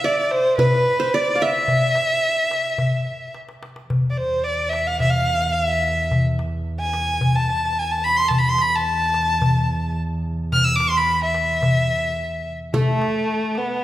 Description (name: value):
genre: Arabic maqam ensemble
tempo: 109 BPM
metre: 4/4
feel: straight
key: E maqam hijaz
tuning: A4 = 437 Hz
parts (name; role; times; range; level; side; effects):
- rich violin; melody; 0.0-13.8 s; A3 to F6+25c; -20 LUFS; equal; none
- qanun; second line; 0.0-3.3, 12.7-13.8 s; A3 to F5+25c; -22 LUFS; right 1 dB; none
- darbuka; percussion; 0.0-13.8 s; none; -23 LUFS; left 1 dB; none
- dark double bass; drone; 3.9-12.8 s; E2; -27 LUFS; right 1 dB; none
room: wet recital hall reverb, RT60 1.7 s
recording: recorded in a church or concert hall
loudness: -18 LUFS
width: side -14 dB against mid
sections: 0.0-3.9 A section; 3.9-12.7 B section; 12.7-13.8 C section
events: drum fill 3.3-3.9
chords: none